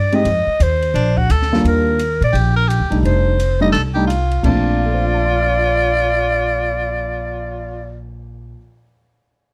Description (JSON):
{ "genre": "jazz, small-group swing and bop", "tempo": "172 BPM", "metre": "4/4", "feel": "swing 63% on 8ths", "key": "Bb major", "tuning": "A4 = 440 Hz", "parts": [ { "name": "growling clarinet", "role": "melody", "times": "0.0-8.0 s", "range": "Bb4 to Eb5", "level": "-21 LUFS", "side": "equal", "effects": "none" }, { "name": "upright bass", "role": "bass", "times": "0.0-8.5 s", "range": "F1 to Bb2", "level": "-21 LUFS", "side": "equal", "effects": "none" }, { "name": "dark baby grand piano", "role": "accompaniment", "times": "0.1-9.0 s", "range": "Eb2 to F6", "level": "-23 LUFS", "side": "equal", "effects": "none" }, { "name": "compact cocktail drum kit", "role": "drums", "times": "0.1-7.2 s", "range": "crash cymbal, cymbal swell, hi-hat, kick drum, ride cymbal, snare drum", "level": "-32 LUFS", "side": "equal", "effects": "none" }, { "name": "breathy tenor saxophone", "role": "second line", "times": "0.9-8.0 s", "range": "D4 to Bb4", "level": "-25 LUFS", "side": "equal", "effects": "none" } ], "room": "little or no reverb", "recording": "close, detailed microphones", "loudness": "-17 LUFS", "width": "mono", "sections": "0.0-1.6 A section; 1.6-4.4 B section; 4.4-7.2 C section", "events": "none", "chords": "0.3 F5; 1.0 Bb; 1.6 Ebmaj7; 3.0 F13; 4.4 Bbmaj9", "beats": "| 0.26 0.61 0.95 1.30 | 1.65 2.00 2.35 2.69 | 3.04 3.39 3.74 4.09 | 4.44 4.79 5.14 5.49 | 5.83 6.18 6.53 6.88" }